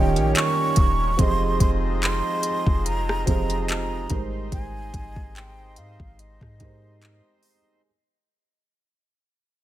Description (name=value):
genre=contemporary R&B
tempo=72 BPM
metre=4/4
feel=swing 54% on 16ths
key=unclear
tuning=A4 = 440 Hz
part: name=breathy mellow jazz flute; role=melody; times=0.0-7.4 s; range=Eb5 to Db6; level=-28 LUFS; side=right 2 dB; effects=ping-pong delay
part: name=felt-muted upright piano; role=accompaniment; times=0.0-7.9 s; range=Eb3 to Eb5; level=-27 LUFS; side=right 5 dB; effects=none
part: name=accordion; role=sustained chords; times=0.0-7.8 s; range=Eb3 to C5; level=-32 LUFS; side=left 2 dB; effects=none
part: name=soft 808-style bass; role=bass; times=0.0-7.2 s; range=Eb1 to Ab2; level=-28 LUFS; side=equal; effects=none
part: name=smooth R&B drum kit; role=drums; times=0.2-7.6 s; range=handclaps, hi-hat, kick drum, rim click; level=-23 LUFS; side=equal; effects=none
room=studio reverb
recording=none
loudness=-20 LUFS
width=side -13 dB against mid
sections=0.0-7.9 A section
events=fade-out 0.0-7.9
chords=0.0 Eb7; 1.2 Fm7; 4.1 Abmaj7